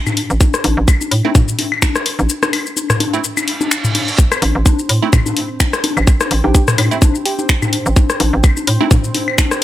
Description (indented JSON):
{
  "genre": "minimal techno",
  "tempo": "127 BPM",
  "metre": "4/4",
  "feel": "swing 56% on 16ths",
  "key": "A minor",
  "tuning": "A4 = 440 Hz",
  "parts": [
    { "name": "garage drum kit", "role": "drums", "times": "0.1-9.6 s", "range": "finger snaps, hi-hat, shaker", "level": "-19 LUFS", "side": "left 3 dB", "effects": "small room ambience" },
    { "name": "booming analog drum machine", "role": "percussion", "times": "0.1-9.6 s", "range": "bongos, rim click, toms, woodblock", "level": "-18 LUFS", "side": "left 3 dB", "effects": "small room ambience" },
    { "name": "hollow knocking FM bass", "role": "bass", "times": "0.3-8.8 s", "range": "A1 to A2", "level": "-15 LUFS", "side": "equal", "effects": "sidechain pumping" },
    { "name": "electronic kick drum", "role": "drums", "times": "0.4-9.5 s", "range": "none", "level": "-11 LUFS", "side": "right 1 dB", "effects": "small room ambience" },
    { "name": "wavetable chord stab", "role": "stabs", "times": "1.2-8.9 s", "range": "A3 to E4", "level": "-23 LUFS", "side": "right 7 dB", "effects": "phaser, tape echo" },
    { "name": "reverse cymbal", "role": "sound effects", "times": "3.4-4.2 s", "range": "none", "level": "-23 LUFS", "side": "right 4 dB", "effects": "none" },
    { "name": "bubbling stepped-filter texture", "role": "texture", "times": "4.2-9.6 s", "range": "C4 to C5", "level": "-30 LUFS", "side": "right 4 dB", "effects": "chorus, built-in reverb, sidechain pumping" },
    { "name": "soft struck synth lead", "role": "melody", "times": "6.4-7.5 s", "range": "G4", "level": "-25 LUFS", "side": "right 5 dB", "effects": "chorus, cassette tape, tape echo" }
  ],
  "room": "little or no reverb",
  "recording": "none",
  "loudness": "-12 LUFS",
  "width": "side -13 dB against mid",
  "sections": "0.0-9.6 A section",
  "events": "break 2.3-4.2; reverse cymbal 3.4-4.2",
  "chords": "0.0 Am",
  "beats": "| 0.41 0.88 1.35 1.82 | 2.29 2.77 3.24 3.71 | 4.18 4.66 5.13 5.60 | 6.08 6.55 7.02 7.49 | 7.96 8.44 8.91 9.38"
}